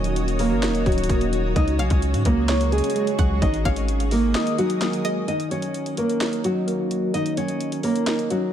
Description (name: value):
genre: hip hop, trap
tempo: 129 BPM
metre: 4/4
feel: half-time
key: Eb minor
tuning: A4 = 440 Hz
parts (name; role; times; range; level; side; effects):
- nylon-string guitar; melody; 0.0-8.5 s; Gb3 to Eb5; -24 LUFS; right 1 dB; analog delay
- string-like resonator pluck; second line; 0.0-5.3 s; Eb5 to Gb5; -34 LUFS; equal; chorus, analog delay
- soft electric-piano-like synth keys; accompaniment; 0.0-8.5 s; Db3 to Eb5; -27 LUFS; equal; chorus, phaser
- granular cloud pad; sustained chords; 0.0-5.3 s; Gb4 to Eb6; -32 LUFS; equal; built-in reverb
- long sustained 808-style bass; bass; 0.0-4.3 s; Db1 to Ab2; -23 LUFS; equal; none
- trap drum kit; drums; 0.0-8.4 s; hi-hat, kick drum, snare drum; -26 LUFS; equal; overdrive
room: light reverb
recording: echo-heavy mix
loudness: -20 LUFS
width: side -10 dB against mid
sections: 0.0-5.3 A section; 5.3-8.5 B section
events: kick muted 4.3-5.3; break 5.3-8.5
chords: 0.0 Ebm7; 1.6 Dbsus4; 3.4 Absus2; 5.3 Ebm7